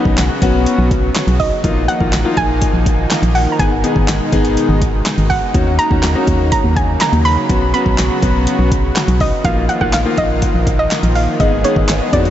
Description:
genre	dance-pop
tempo	123 BPM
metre	4/4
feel	straight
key	unclear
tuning	A4 = 440 Hz
part	soft round pluck	melody	0.0-12.3 s	Db5 to Cb6	-20 LUFS	right 2 dB	chorus, tape echo
part	clear grand piano	accompaniment	0.0-12.3 s	Bb3 to Ab4	-20 LUFS	left 3 dB	sidechain pumping
part	soft supersaw	sustained chords	0.0-12.3 s	Cb3 to Ab4	-21 LUFS	equal	sidechain pumping
part	organ-like FM bass	bass	0.1-12.3 s	Ab1 to F2	-16 LUFS	equal	sidechain pumping
part	deep house drum kit	drums	0.1-12.3 s	handclaps, hi-hat, kick drum, snare drum	-18 LUFS	equal	none
room	moderate huge ambient reverb, RT60 8.2 s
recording	dreamy mix soaked in reverb, nothing above 7.9 kHz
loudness	-12 LUFS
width	side -11 dB against mid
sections	0.0-12.3 A section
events	none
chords	0.0 Bsus2; 1.6 Bbsus4; 3.6 Abm; 5.5 Ebm7; 7.5 Bsus2; 9.4 Bbsus4; 11.4 Abm

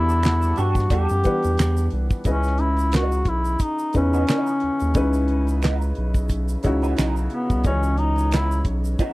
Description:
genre	R&B, neo-soul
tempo	89 BPM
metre	4/4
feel	swing 56% on 16ths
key	C# minor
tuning	A4 = 439 Hz
part	warm duduk	melody	0.0-8.6 s	B3 to G4	-24 LUFS	left 1 dB	none
part	warm upright piano	accompaniment	0.0-9.1 s	C#3 to F#5	-26 LUFS	left 1 dB	none
part	hollow soft pad	sustained chords	0.0-2.2 s	G3 to D6	-35 LUFS	right 2 dB	chorus
part	round analog bass	bass	0.0-9.0 s	B1 to G2	-22 LUFS	equal	none
part	egg shaker and finger snaps	percussion	0.1-9.1 s	none	-38 LUFS	right 5 dB	none
part	electric guitar through a small old amp	second line	0.2-9.1 s	E3 to A4	-29 LUFS	right 5 dB	wah, ensemble chorus
part	damped 70s drum kit	drums	0.2-9.1 s	handclaps, hi-hat, kick drum, snare drum	-21 LUFS	equal	none
room	small room ambience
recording	dry, close 1970s-style studio recording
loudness	-19 LUFS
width	side -20 dB against mid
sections	0.0-2.3 A section; 2.3-9.1 B section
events	duduk solo 2.3-9.1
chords	0.0 Em11; 2.3 C#m9

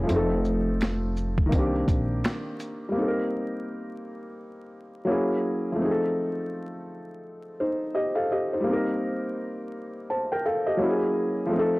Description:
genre	lo-fi hip hop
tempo	84 BPM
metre	4/4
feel	swing 61% on 16ths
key	C dorian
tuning	A4 = 440 Hz
part	felt-muted upright piano	accompaniment	0.0-11.8 s	Eb3 to A5	-26 LUFS	equal	cassette tape, low-pass filter
part	upright bass	bass	0.0-2.2 s	F1 to C2	-27 LUFS	equal	transformer saturation
part	boom bap sampler-style drum kit	drums	0.1-2.8 s	finger snaps, hi-hat, kick drum, shaker, snare drum	-26 LUFS	equal	none
room	studio reverb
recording	dry, gritty hardware recording, vinyl crackle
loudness	-24 LUFS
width	side -21 dB against mid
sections	0.0-2.9 A section; 2.9-11.8 B section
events	none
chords	0.1 F7; 1.5 Cm9; 2.9 Cm7; 5.1 F#9; 5.8 F7; 8.7 Cm7; 10.8 F#9

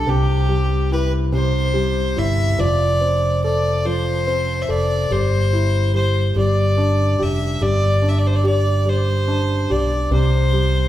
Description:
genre	pop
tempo	48 BPM (dotted quarters)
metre	6/8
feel	straight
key	C major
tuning	A4 = 440 Hz
part	clear fiddle	melody	0.0-10.9 s	G4 to E5	-22 LUFS	left 1 dB	none
part	clear upright piano	accompaniment	0.0-10.9 s	C3 to A4	-22 LUFS	left 1 dB	none
part	fingered electric bass	bass	0.0-10.9 s	F1 to C2	-19 LUFS	equal	none
room	wet large studio reverb, RT60 1.4 s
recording	band playing live in one room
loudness	-16 LUFS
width	side -13 dB against mid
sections	0.0-10.9 A section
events	none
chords	0.1 C; 2.6 F6; 5.1 C/G; 6.4 G5; 7.6 Gsus4; 10.1 C5

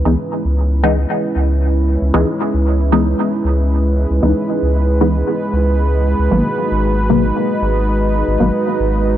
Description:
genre	dub techno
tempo	115 BPM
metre	4/4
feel	straight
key	C# minor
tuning	A4 = 440 Hz
part	dark analog pad	sustained chords	0.0-9.2 s	G#3 to B4	-18 LUFS	right 2 dB	chorus
part	soft dub sub bass	bass	0.0-9.2 s	G#1 to C#2	-16 LUFS	equal	none
part	filtered dub chord stab	stabs	0.1-8.5 s	B2 to D#4	-18 LUFS	left 1 dB	chorus, phaser, dub echo
part	bubbling stepped-filter texture	texture	6.3-9.2 s	D#4 to D#5	-28 LUFS	left 5 dB	chorus, built-in reverb
room	light reverb, digital ambience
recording	dry, gritty hardware recording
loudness	-13 LUFS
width	side -11 dB against mid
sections	0.0-9.2 A section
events	filter sweep on synth stab 0.0-9.2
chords	0.0 C#m7; 6.3 G#m7

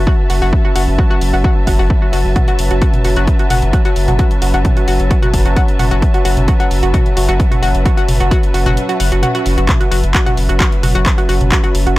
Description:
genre	driving peak-time techno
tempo	131 BPM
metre	4/4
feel	straight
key	F# minor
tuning	A4 = 440 Hz
part	saturated sub bass	bass	0.0-12.0 s	F#1	-15 LUFS	equal	tube saturation, sidechain pumping, low-pass filter
part	analog drone	drone	0.0-12.0 s	F#3 to C#4	-23 LUFS	equal	chorus, sidechain pumping
part	muted studio string section	texture	0.0-12.0 s	F#4 to A5	-23 LUFS	left 2 dB	sidechain pumping
part	analog pluck	riff	0.1-11.9 s	F#4 to F#5	-20 LUFS	equal	chorus, tube saturation, sidechain pumping, tape echo
part	electronic kick drum	drums	0.1-11.6 s	none	-13 LUFS	equal	overdrive
part	techno drum kit	drums	0.3-12.0 s	handclaps, hi-hat, toms	-21 LUFS	equal	overdrive
part	swell	sound effects	9.0-9.7 s	none	-28 LUFS	left 2 dB	none
room	digital ambience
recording	dry, gritty hardware recording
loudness	-11 LUFS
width	side -18 dB against mid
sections	0.0-12.0 A section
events	kick drops out 8.8-9.7; swell 9.0-9.7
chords	0.0 F#m

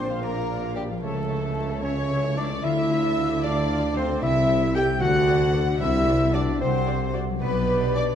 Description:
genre	cinematic, playful, whimsical film cue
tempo	75 BPM (dotted quarters)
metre	6/8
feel	straight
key	D minor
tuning	A4 = 440 Hz
part	warm chamber violin section	melody	0.0-8.0 s	G4 to G5	-33 LUFS	left 3 dB	none
part	bright silver concert flute	second line	0.0-8.2 s	G5 to G6	-35 LUFS	left 2 dB	none
part	clear clarinet	second line	0.0-8.1 s	G4 to G5	-33 LUFS	left 2 dB	none
part	warm chamber violin section	second line	0.0-8.2 s	G4 to G5	-35 LUFS	left 3 dB	none
part	mellow bassoon	accompaniment	0.0-8.2 s	G3 to G4	-28 LUFS	right 2 dB	none
part	rich studio viola section	accompaniment	0.0-8.2 s	D4 to F5	-37 LUFS	equal	none
part	warm French horn section	sustained chords	0.0-8.1 s	G3 to G4	-29 LUFS	equal	none
part	concert harp	arpeggios	0.0-8.2 s	Bb2 to Bb5	-31 LUFS	left 9 dB	none
part	dark chamber cello section	bass	0.0-8.2 s	Bb2 to D3	-31 LUFS	right 1 dB	none
part	dark studio double bass section	bass	0.0-8.2 s	Bb1 to D2	-30 LUFS	right 1 dB	none
part	warm tuba	bass	0.0-8.2 s	Bb1 to D2	-31 LUFS	right 2 dB	none
room	wet scoring stage reverb, RT60 2.1 s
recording	dark, warm production, vinyl crackle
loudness	-21 LUFS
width	side -8 dB against mid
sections	0.0-8.2 A section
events	none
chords	0.0 Bb; 1.0 A/C#; 2.6 Dm; 4.2 Am7/C; 5.0 D; 5.8 D7/C; 7.4 G/B

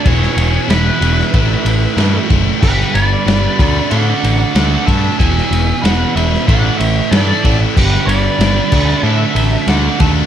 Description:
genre	classic rock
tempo	94 BPM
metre	4/4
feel	straight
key	unclear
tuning	A4 = 435 Hz
part	lead guitar through a small cranked amp	melody	0.0-10.1 s	B4 to A5	-20 LUFS	right 1 dB	wah, overdrive, slapback echo
part	overdriven semi-hollow guitar	riff	0.0-10.3 s	E2 to A4	-20 LUFS	left 16 dB	none
part	overdriven semi-hollow guitar	riff	0.0-10.3 s	E2 to D4	-19 LUFS	right 14 dB	spring reverb
part	octave-fuzz lead guitar	second line	0.1-10.1 s	E4 to E5	-26 LUFS	right 4 dB	distortion
part	growling picked electric bass	bass	0.1-10.2 s	E1 to A2	-15 LUFS	left 1 dB	overdrive
part	vintage drum kit	drums	0.1-10.2 s	crash cymbal, kick drum, ride cymbal, snare drum	-16 LUFS	equal	none
room	small room reverb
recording	none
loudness	-11 LUFS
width	side -10 dB against mid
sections	0.0-10.3 A section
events	none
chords	0.1 E; 1.3 Asus4; 2.6 G; 3.6 D; 5.2 E; 6.5 Asus4; 7.8 G; 8.7 D

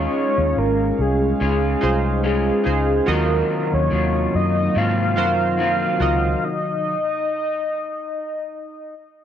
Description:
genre	indie pop, bedroom pop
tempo	72 BPM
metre	4/4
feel	swing 55% on 16ths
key	unclear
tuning	A4 = 437 Hz
part	soft octave-layered synth lead	melody	0.0-8.9 s	Ab4 to F5	-22 LUFS	left 1 dB	analog chorus, tape echo
part	chorused retro synth keys	accompaniment	0.0-6.5 s	Eb4 to Eb5	-26 LUFS	right 5 dB	cassette tape
part	electric guitar through a small old amp	accompaniment	0.0-6.9 s	Eb3 to F4	-24 LUFS	left 3 dB	lush chorus, warbly pitch drift
part	warbly tape-like pad	sustained chords	0.0-6.4 s	C3 to F5	-28 LUFS	right 3 dB	chorus, built-in reverb
part	vintage muted fingered electric bass	bass	0.0-6.3 s	Ab1 to Ab2	-22 LUFS	equal	none
room	light reverb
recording	none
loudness	-18 LUFS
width	side -9 dB against mid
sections	0.0-9.2 A section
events	stop 6.4-9.2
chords	0.0 Dbmaj7; 3.1 Ab13 (rootless)

